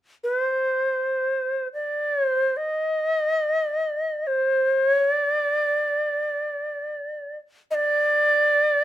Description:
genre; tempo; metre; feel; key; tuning
japanese traditional, Japanese chamber music; free time; none; none; unclear; A4 = 441 Hz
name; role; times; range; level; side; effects
breathy bright shakuhachi; solo; 0.2-8.8 s; C5 to Eb5; -21 LUFS; equal; none
room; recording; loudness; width
light reverb; none; -21 LUFS; side -12 dB against mid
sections
0.0-8.8 A section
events
none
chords
none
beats
free time

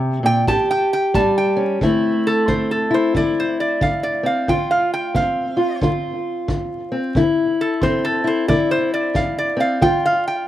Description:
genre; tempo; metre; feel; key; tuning
acoustic country blues, solo or duo; 90 BPM; 4/4; swing 62% on 8ths; D minor; A4 = 440 Hz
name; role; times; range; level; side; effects
fingerpicked steel-string acoustic guitar; accompaniment; 0.0-10.5 s; A2 to G4; -19 LUFS; left 1 dB; slapback echo
metal-body resonator slide guitar; melody; 0.3-10.5 s; A4 to A5; -20 LUFS; right 1 dB; slapback echo
kick drum; drums; 0.5-10.0 s; none; -26 LUFS; equal; none
room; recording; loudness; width
little or no reverb; vinyl crackle; -16 LUFS; side -13 dB against mid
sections
0.0-1.8 A section; 1.8-10.5 A section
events
resonator guitar played with a steel bar solo 0.0-10.5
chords
0.5 A7; 1.8 Dm9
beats
0.47 1.14 | 1.81 2.48 3.15 3.82 | 4.49 5.15 5.82 6.49 | 7.15 7.82 8.48 9.15 | 9.82

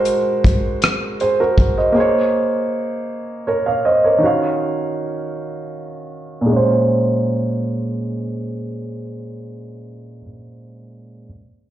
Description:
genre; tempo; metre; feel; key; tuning
slow six-eight R&B; 53 BPM (dotted quarters); 6/8; straight; Bb minor; A4 = 440 Hz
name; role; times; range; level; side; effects
warm grand piano; accompaniment; 0.0-11.3 s; Bb2 to F5; -18 LUFS; right 1 dB; none
damped 70s drum kit; drums; 0.1-1.8 s; hi-hat, kick drum, rim click; -16 LUFS; equal; none
room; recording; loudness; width
light reverb; played on a big sound system in a bare room, large studio reverb, low-pass filter; -16 LUFS; side -12 dB against mid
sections
0.0-6.5 A section; 6.5-8.7 B section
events
filter sweep 0.0-6.5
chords
0.0 Ab9; 2.0 Bbm9; 4.2 Ebm9; 6.5 Bbm9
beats
0.82 | 1.96 3.09 | 4.22 5.35 | 6.48 7.62

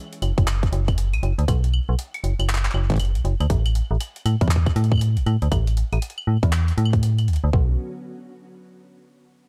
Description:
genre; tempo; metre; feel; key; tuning
IDM; 119 BPM; 4/4; swing 62% on 16ths; B minor; A4 = 440 Hz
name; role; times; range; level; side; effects
jungle sampler-style drum kit; drums; 0.1-7.5 s; claves, handclaps, hi-hat; -34 LUFS; equal; digital delay
metallic FM bass; bass; 0.2-7.8 s; F#1 to A2; -22 LUFS; equal; tube saturation
electronic kick drum; drums; 0.4-7.7 s; none; -24 LUFS; equal; none
soft string machine; sustained chords; 7.5-7.8 s; D3 to F#4; -44 LUFS; equal; ensemble chorus, shimmer reverb
room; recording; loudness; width
digital ambience; dark, warm production; -21 LUFS; mono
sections
0.0-7.5 A section; 7.5-9.5 B section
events
filter sweep on FM bass 0.0-7.5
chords
0.0 B5; 3.5 A5; 7.5 Bmadd9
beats
0.47 0.98 | 1.48 1.99 2.49 3.00 | 3.50 4.00 4.51 5.01 | 5.52 6.02 6.53 7.03 | 7.53

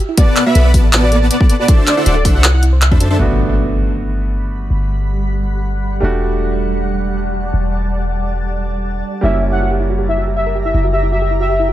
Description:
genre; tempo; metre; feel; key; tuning
future bass; 159 BPM; 4/4; half-time; G major; A4 = 440 Hz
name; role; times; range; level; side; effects
soft round pluck; arpeggios; 0.0-3.1, 9.2-11.7 s; E4 to A5; -25 LUFS; right 3 dB; chorus, sidechain pumping, dub echo
warm velvety synth lead; melody; 0.2-2.6, 9.2-11.7 s; D5 to F#5; -20 LUFS; equal; chorus, sidechain pumping, tape echo
dense compressed supersaw; riff; 0.2-3.2 s; B3 to B5; -18 LUFS; equal; sidechain pumping, low-pass filter, dub echo
electronic kick drum; drums; 0.2-3.0 s; none; -11 LUFS; equal; none
pop drum kit; drums; 0.2-3.1 s; handclaps, hi-hat; -16 LUFS; equal; overdrive
warm 808-style bass; bass; 0.6-11.7 s; D1 to F#2; -16 LUFS; equal; sidechain pumping
clear baby grand piano; accompaniment; 3.2-11.7 s; G3 to F#4; -23 LUFS; right 3 dB; vintage 12-bit sampler grit, sidechain pumping, dub echo
shimmering ambient pad; sustained chords; 4.1-11.7 s; G3 to B5; -24 LUFS; right 1 dB; chorus, built-in reverb, sidechain pumping
impact; sound effects; 3.2-4.7 s; none; -22 LUFS; equal; none
room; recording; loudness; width
digital ambience; none; -12 LUFS; side -13 dB against mid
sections
0.0-3.2 A section; 3.2-11.7 B section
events
drop 0.0-3.2; impact 3.2-4.7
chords
0.2 Bm7; 1.7 D9; 3.2 Gmaj7; 6.0 Em11; 9.2 F#7b9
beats
| 0.17 0.55 0.93 1.31 | 1.68 2.06 2.44 2.82 | 3.19 3.57 3.95 4.33 | 4.70 5.08 5.46 5.83 | 6.21 6.59 6.97 7.34 | 7.72 8.10 8.48 8.85 | 9.23 9.61 9.99 10.36 | 10.74 11.12 11.50

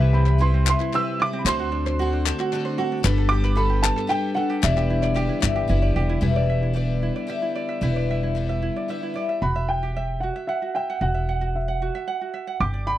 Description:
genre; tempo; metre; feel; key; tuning
indie folk with a building arrangement; 113 BPM; 3/4; straight; E minor; A4 = 444 Hz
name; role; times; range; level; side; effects
picked twelve-string acoustic guitar; accompaniment; 0.0-9.4 s; C3 to B4; -27 LUFS; left 8 dB; none
mellow tonewheel organ; sustained chords; 0.0-6.2 s; C3 to B4; -31 LUFS; right 2 dB; slow rotary speaker
tenor ukulele; arpeggios; 0.0-13.0 s; C4 to G5; -29 LUFS; right 6 dB; none
upright bass; bass; 0.0-13.0 s; E1 to D2; -22 LUFS; equal; none
warm upright piano; melody; 0.1-5.7, 9.4-13.0 s; E5 to E6; -26 LUFS; right 2 dB; none
group handclap; percussion; 0.3-5.6 s; none; -27 LUFS; left 14 dB; none
room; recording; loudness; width
little or no reverb; dry, close 1970s-style studio recording; -20 LUFS; side -13 dB against mid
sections
0.0-6.2 A section; 6.2-9.4 B section; 9.4-13.0 C section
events
none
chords
0.0 Cmaj7; 1.5 D7; 3.0 Gadd9; 4.6 Em7; 9.4 Emadd9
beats
0.39 0.92 | 1.45 1.98 2.51 | 3.04 3.58 4.11 | 4.63 5.17 5.70 | 6.23 6.76 7.29 | 7.82 8.35 8.89 | 9.42 9.95 10.48 | 11.02 11.55 12.08 | 12.61

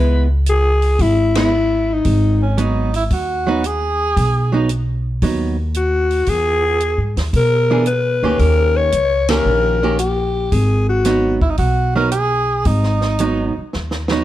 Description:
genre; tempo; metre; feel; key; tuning
jazz, small-group swing and bop; 113 BPM; 4/4; swing 68% on 8ths; G# minor; A4 = 440 Hz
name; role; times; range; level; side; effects
growling alto saxophone; melody; 0.0-2.4, 5.8-11.4 s; D#4 to C#5; -17 LUFS; left 3 dB; none
archtop guitar, miked and amplified; accompaniment; 0.0-14.2 s; D#3 to G#4; -20 LUFS; right 4 dB; none
upright bass; bass; 0.0-14.2 s; G#1 to B2; -18 LUFS; equal; none
compact cocktail drum kit; drums; 0.5-14.2 s; hi-hat, kick drum, ride cymbal, snare drum; -23 LUFS; equal; none
clear tenor saxophone; second line; 2.4-4.7, 11.4-13.7 s; C#4 to A#4; -20 LUFS; right 3 dB; none
room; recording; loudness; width
light reverb; dark, warm production; -14 LUFS; side -14 dB against mid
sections
0.0-14.2 A section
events
band accent 1.3, 9.2; drum fill 13.7-14.2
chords
0.0 C#m7; 2.1 G#m7; 6.3 E7; 8.4 D#7; 10.5 G#m7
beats
0.47 0.99 1.52 | 2.05 2.58 3.11 3.64 | 4.17 4.69 5.22 5.75 | 6.28 6.81 7.34 7.87 | 8.40 8.93 9.46 9.99 | 10.53 11.06 11.59 12.13 | 12.66 13.20 13.73

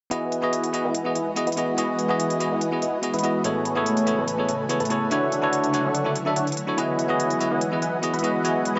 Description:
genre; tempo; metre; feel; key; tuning
future bass; 144 BPM; 4/4; half-time; E major; A4 = 440 Hz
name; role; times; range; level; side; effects
barky tine electric piano; accompaniment; 0.1-8.8 s; B3 to E5; -27 LUFS; equal; digital delay
ethereal airy pad; sustained chords; 1.0-8.8 s; C#3 to G#5; -33 LUFS; equal; ensemble chorus, built-in reverb
dense compressed supersaw; riff; 0.1-8.8 s; A3 to B5; -28 LUFS; equal; low-pass filter, digital delay
electronic hi-hat; drums; 0.1-8.7 s; none; -35 LUFS; equal; none
room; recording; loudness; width
moderate huge ambient reverb, RT60 5.1 s; nothing above 7.8 kHz; -24 LUFS; mono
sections
0.1-8.8 A section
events
none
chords
0.1 Emaj9; 3.4 Amaj9; 5.1 Dmaj9; 6.8 Emaj9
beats
| 0.11 0.53 0.95 1.36 | 1.78 2.20 2.61 3.03 | 3.45 3.86 4.28 4.70 | 5.11 5.53 5.95 6.36 | 6.78 7.20 7.61 8.03 | 8.45

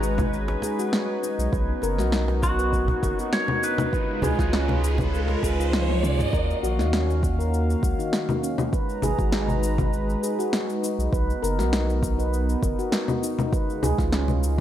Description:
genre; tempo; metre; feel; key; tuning
organic downtempo; 100 BPM; 4/4; straight; Eb minor; A4 = 440 Hz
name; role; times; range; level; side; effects
clean lap steel guitar; melody; 0.0-5.7 s; F#4 to Db5; -30 LUFS; equal; digital delay
warm analog pad; sustained chords; 0.0-14.6 s; Db3 to Bb5; -30 LUFS; equal; chorus, sidechain pumping
warm sub bass; bass; 0.0-14.6 s; F#1 to Eb2; -25 LUFS; equal; sidechain pumping
deep house drum kit; drums; 0.0-14.6 s; cabasa, congas, snare drum, toms; -28 LUFS; left 2 dB; overdrive
drifting glass-harmonics texture; texture; 0.0-6.3 s; Db4 to Db5; -42 LUFS; left 2 dB; none
handpan; arpeggios; 0.2-14.3 s; Db4 to Cb5; -29 LUFS; equal; digital delay
electronic kick drum; drums; 0.2-14.6 s; none; -26 LUFS; equal; overdrive
cajon; percussion; 0.2-5.6 s; none; -32 LUFS; right 2 dB; none
riser; sound effects; 3.0-6.3 s; none; -32 LUFS; equal; none
room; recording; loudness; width
light reverb; none; -21 LUFS; side -11 dB against mid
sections
0.0-6.3 A section; 6.3-14.6 A section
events
riser 3.0-6.3; kick drops out 5.7-6.3; drum fill 5.7-6.3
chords
0.0 Abm; 1.5 Bmaj7; 3.9 Db7; 6.3 Ebm7; 8.7 Abm; 11.1 Bmaj7; 13.5 Db7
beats
0.33 0.93 | 1.53 2.13 2.73 3.33 | 3.93 4.53 5.13 5.73 | 6.33 6.93 7.53 8.13 | 8.73 9.33 9.93 10.53 | 11.13 11.73 12.33 12.93 | 13.53 14.13

